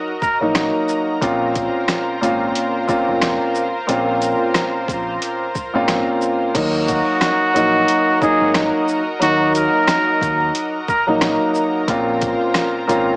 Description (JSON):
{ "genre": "hip hop, boom-bap hip-hop", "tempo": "90 BPM", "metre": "4/4", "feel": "swing 58% on 16ths", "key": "Eb dorian", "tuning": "A4 = 440 Hz", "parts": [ { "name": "dark grand piano", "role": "accompaniment", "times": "0.0-13.2 s", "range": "Bb2 to F4", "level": "-18 LUFS", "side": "equal", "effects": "cassette tape, high-pass filter, low-pass filter" }, { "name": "lush unison pad", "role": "sustained chords", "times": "0.0-13.2 s", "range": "F4 to Bb5", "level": "-25 LUFS", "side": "equal", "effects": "chorus, high-pass filter, low-pass filter" }, { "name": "trumpet with straight mute", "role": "melody", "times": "0.2-0.4, 6.9-11.1 s", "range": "Gb4 to Bb4", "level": "-18 LUFS", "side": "equal", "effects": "high-pass filter, low-pass filter, digital delay" }, { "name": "boom bap sampler-style drum kit", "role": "drums", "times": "0.2-13.1 s", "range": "crash cymbal, hi-hat, kick drum, rim click, shaker, snare drum", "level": "-22 LUFS", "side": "equal", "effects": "none" }, { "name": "deep dub fingered electric bass", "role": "bass", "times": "0.4-13.2 s", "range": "F1 to Eb2", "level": "-28 LUFS", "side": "equal", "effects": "none" }, { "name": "finger snaps", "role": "percussion", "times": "0.6-12.7 s", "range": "none", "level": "barely audible", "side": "none", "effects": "none" } ], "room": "light reverb, digital ambience", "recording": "vinyl crackle, small speaker sound", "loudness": "-15 LUFS", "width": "side -28 dB against mid", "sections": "0.0-6.5 A section; 6.5-13.2 B section", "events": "none", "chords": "0.0 Ebm; 1.2 Bbmadd9; 6.5 Ebm; 11.9 Bbmadd9" }